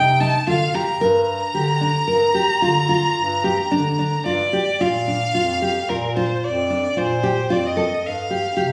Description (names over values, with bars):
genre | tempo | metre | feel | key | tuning
contemporary instrumental, chamber music in an uneven meter | 111 BPM | 7/4 | straight | Bb major | A4 = 441 Hz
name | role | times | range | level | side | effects
rich violin | melody | 0.0-8.7 s | Bb4 to Bb5 | -23 LUFS | equal | none
nylon-string guitar | arpeggios | 0.0-8.7 s | D4 to Bb4 | -24 LUFS | equal | none
warm bass clarinet | bass | 0.0-8.7 s | F2 to D3 | -27 LUFS | equal | none
room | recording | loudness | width
moderate studio reverb, RT60 0.6 s | recorded on a phone in the room, studio reverb | -20 LUFS | mono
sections
0.0-4.8 A section; 4.8-8.7 B section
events
none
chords
0.0 F7; 1.0 Gm7; 4.8 Bb5